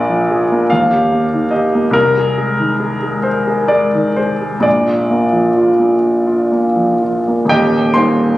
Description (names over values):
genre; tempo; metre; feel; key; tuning
classical, romantic character piece for solo piano; 38-52 BPM (dotted quarters); 6/8; rubato; Eb major; A4 = 442 Hz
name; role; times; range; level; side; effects
clear grand piano; solo; 0.0-8.4 s; Eb1 to C6; -12 LUFS; equal; none
room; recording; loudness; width
moderate recital hall reverb, RT60 1.6 s; recorded on a phone in the room, club reverb, compression; -12 LUFS; side -16 dB against mid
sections
0.0-7.5 A section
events
none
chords
0.0 Bb7; 0.7 Eb; 1.9 Ab/C; 4.7 Bb; 7.5 Eb